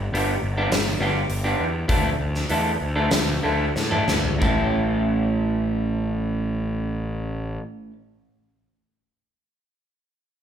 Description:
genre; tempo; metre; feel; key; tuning
quiet-loud alternative rock; 89-105 BPM; 4/4; straight; A mixolydian; A4 = 440 Hz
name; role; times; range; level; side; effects
fuzz picked electric bass; bass; 0.0-7.6 s; G1 to A2; -26 LUFS; equal; overdrive
electric guitar through a small old amp; arpeggios; 0.1-7.9 s; A2 to A4; -24 LUFS; right 1 dB; spring reverb
big rock drum kit; drums; 0.1-4.6 s; hi-hat, kick drum, snare drum, toms; -25 LUFS; equal; none
room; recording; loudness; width
moderate large studio reverb, RT60 1.4 s; band playing live in one room; -20 LUFS; side -9 dB against mid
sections
0.0-4.4 A section; 4.4-7.1 B section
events
slowing down 0.0-4.4; drum fill 3.8-4.4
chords
0.0 G; 1.9 Dsus2; 4.4 A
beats
0.14 0.71 1.30 | 1.89 2.50 3.12 3.76 | 4.42 5.09 5.77 6.44

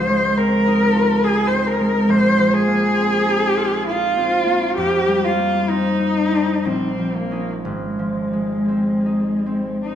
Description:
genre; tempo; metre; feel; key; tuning
classical, impressionist duo for cello and harp; 49-71 BPM; 3/4; rubato; unclear; A4 = 440 Hz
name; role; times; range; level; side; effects
warm cello; melody; 0.0-9.9 s; Ab3 to C5; -19 LUFS; left 1 dB; none
concert harp; accompaniment; 0.0-9.9 s; Ab1 to F4; -19 LUFS; equal; none
room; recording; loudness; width
wet recital hall reverb, RT60 1.6 s; minimal, uncompressed stereo recording; -16 LUFS; side -9 dB against mid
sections
0.0-9.9 A section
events
none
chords
0.0 Dbmaj9; 2.1 Bb9sus4; 4.8 Fm11; 6.7 Bbmadd9; 7.7 Ab6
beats
0.38 1.24 | 2.10 2.97 3.87 | 4.78 5.70 6.65 | 7.65 8.68 9.85

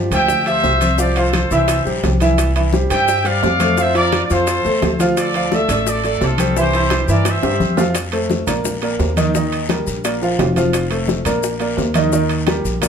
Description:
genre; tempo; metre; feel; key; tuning
latin, salsa; 172 BPM; 4/4; straight; F major; A4 = 441 Hz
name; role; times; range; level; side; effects
clear concert grand piano; accompaniment; 0.0-12.9 s; Eb3 to F5; -19 LUFS; right 1 dB; none
upright bass; bass; 0.0-12.9 s; F1 to G2; -21 LUFS; equal; none
bright trumpet section; melody; 0.1-7.8 s; F4 to G5; -18 LUFS; equal; plate reverb
bongos; percussion; 0.1-12.9 s; none; -25 LUFS; left 8 dB; none
congas; percussion; 0.1-12.9 s; none; -25 LUFS; left 2 dB; none
guiro; percussion; 0.1-12.9 s; none; -32 LUFS; left 6 dB; none
maracas; percussion; 0.1-12.9 s; none; -31 LUFS; left 8 dB; none
timbales; percussion; 0.1-12.9 s; none; -25 LUFS; right 7 dB; none
room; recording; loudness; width
moderate studio reverb, RT60 0.8 s; none; -14 LUFS; side -7 dB against mid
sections
0.0-8.0 A section; 8.0-12.9 B section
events
drum fill 6.9-8.0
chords
0.0 G5; 1.0 Csus4; 1.7 C; 3.8 F; 5.2 Dm; 6.6 C; 8.0 F; 8.7 Bb; 9.3 Eb; 10.0 Bb; 10.7 F; 11.4 Bb; 12.1 Eb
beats
0.30 0.64 | 0.99 1.34 1.69 2.04 | 2.39 2.73 3.08 3.43 | 3.78 4.13 4.47 4.82 | 5.17 5.52 5.87 6.21 | 6.56 6.91 7.26 7.61 | 7.96 8.30 8.65 9.00 | 9.35 9.70 10.04 10.39 | 10.74 11.09 11.43 11.78 | 12.13 12.47 12.82

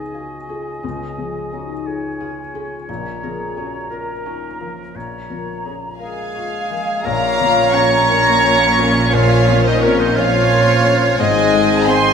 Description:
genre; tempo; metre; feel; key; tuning
cinematic, emotional film score for orchestra; 58 BPM (dotted quarters); 6/8; rubato; Bb minor from 7.0 s; A4 = 442 Hz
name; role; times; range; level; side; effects
clear oboe; second line; 0.0-12.1 s; Db4 to Eb5; -24 LUFS; right 2 dB; none
dark clarinet; second line; 0.0-12.1 s; Eb4 to Db5; -24 LUFS; left 1 dB; none
hollow concert flute; second line; 0.0-12.1 s; Bb4 to Bb5; -23 LUFS; equal; none
felt-muted upright piano; accompaniment; 0.0-12.1 s; Bb1 to F5; -26 LUFS; left 4 dB; none
concert harp; arpeggios; 0.0-12.1 s; Ab2 to C6; -28 LUFS; left 4 dB; none
warm studio violin section; melody; 6.0-12.1 s; Db5 to Db6; -21 LUFS; equal; none
rich studio violin section; second line; 6.0-12.1 s; Bb4 to Bb5; -22 LUFS; right 1 dB; none
dark French horn section; sustained chords; 6.0-12.1 s; Db3 to Db4; -23 LUFS; left 3 dB; none
rich studio viola section; accompaniment; 7.0-12.1 s; C4 to Ab4; -24 LUFS; left 1 dB; none
warm studio cello section; bass; 7.0-12.1 s; Ab2 to Bb2; -22 LUFS; right 1 dB; none
rich studio double bass section; bass; 7.1-12.1 s; Ab1 to Bb1; -21 LUFS; right 4 dB; none
room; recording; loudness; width
wet stone room reverb, RT60 1.3 s; none; -13 LUFS; side -7 dB against mid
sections
0.0-7.0 A section; 7.0-12.1 B section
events
none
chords
0.0 Db; 2.9 Bbm; 7.0 Bbmadd9; 11.2 Ab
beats
| 0.83 1.86 | 2.88 3.90 | 4.95 5.99 | 7.04 8.09 | 9.13 10.16 | 11.20

